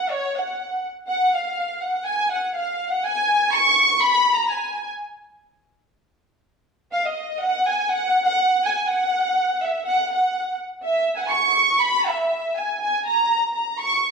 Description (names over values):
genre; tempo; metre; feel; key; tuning
mexican folk; 123 BPM; 2/4; straight; F# major; A4 = 440 Hz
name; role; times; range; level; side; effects
dark studio violin section; solo; 0.0-4.9, 6.9-14.0 s; C#5 to C#6; -19 LUFS; equal; none
room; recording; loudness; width
wet large studio reverb, RT60 1.1 s; band playing live in one room; -19 LUFS; side -5 dB against mid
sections
0.0-1.1 A section; 1.1-8.9 A section; 8.9-14.1 B section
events
none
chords
none